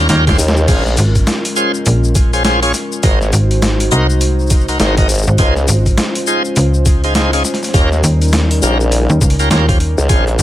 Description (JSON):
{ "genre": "glitch hop", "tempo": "102 BPM", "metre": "4/4", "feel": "swing 61% on 16ths", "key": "unclear", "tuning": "A4 = 440 Hz", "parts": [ { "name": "dark analog pad", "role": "sustained chords", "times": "0.0-10.4 s", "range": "G3 to C5", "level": "-21 LUFS", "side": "left 1 dB", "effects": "chorus, sidechain pumping" }, { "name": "bright tonewheel organ", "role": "stabs", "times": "0.0-10.2 s", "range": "Db4 to Eb5", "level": "-19 LUFS", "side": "equal", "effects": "overdrive, slow rotary speaker, sidechain pumping, dub echo" }, { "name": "slap-like FM bass", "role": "bass", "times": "0.0-10.4 s", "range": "Ab1 to Eb2", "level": "-13 LUFS", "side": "equal", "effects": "none" }, { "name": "boom bap sampler-style drum kit", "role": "drums", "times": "0.1-10.4 s", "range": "crash cymbal, hi-hat, shaker, snare drum", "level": "-18 LUFS", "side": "left 1 dB", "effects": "overdrive" }, { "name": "electronic kick drum", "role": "drums", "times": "0.3-10.2 s", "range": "none", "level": "-13 LUFS", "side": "equal", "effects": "overdrive" }, { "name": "formant-sweep wobble bass", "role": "bass", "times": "0.4-10.4 s", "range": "Ab1 to Eb2", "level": "-14 LUFS", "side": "equal", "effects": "chorus, overdrive" } ], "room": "little or no reverb", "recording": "none", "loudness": "-11 LUFS", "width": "side -13 dB against mid", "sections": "0.0-10.4 A section", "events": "drum fill 0.0-0.7", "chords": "0.0 Eb7; 0.7 Bbm7; 3.0 Ab7; 5.4 Dbmaj7; 7.7 Eb7" }